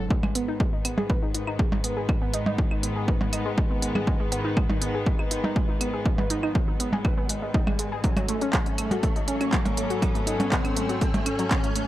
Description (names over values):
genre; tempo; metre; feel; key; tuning
melodic techno; 121 BPM; 4/4; straight; G# phrygian; A4 = 440 Hz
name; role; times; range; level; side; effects
warm studio string section; sustained chords; 0.0-11.9 s; D#3 to A4; -33 LUFS; left 2 dB; sidechain pumping
warbly dusty pluck; arpeggios; 0.0-11.9 s; C#3 to B4; -31 LUFS; right 1 dB; chorus, sidechain pumping, analog delay
round analog bass; bass; 0.0-11.6 s; none; barely audible; none; none
bowed-like drone; drone; 0.0-11.9 s; G#2; -35 LUFS; equal; built-in reverb, sidechain pumping
electronic kick drum; drums; 0.1-11.6 s; none; -25 LUFS; equal; none
riser; sound effects; 4.3-11.9 s; none; -36 LUFS; left 1 dB; none
techno drum kit; drums; 0.2-11.9 s; claves, handclaps, hi-hat, percussion blips; -28 LUFS; right 1 dB; none
room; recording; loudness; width
digital ambience; dry, gritty hardware recording; -23 LUFS; side -14 dB against mid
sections
0.1-11.9 A section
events
build-up 0.1-11.9; riser 4.3-11.9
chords
0.1 G#m; 8.0 F#m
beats
| 0.11 0.60 1.10 1.59 | 2.09 2.58 3.08 3.58 | 4.07 4.57 5.06 5.56 | 6.06 6.55 7.05 7.54 | 8.04 8.54 9.03 9.53 | 10.02 10.52 11.02 11.51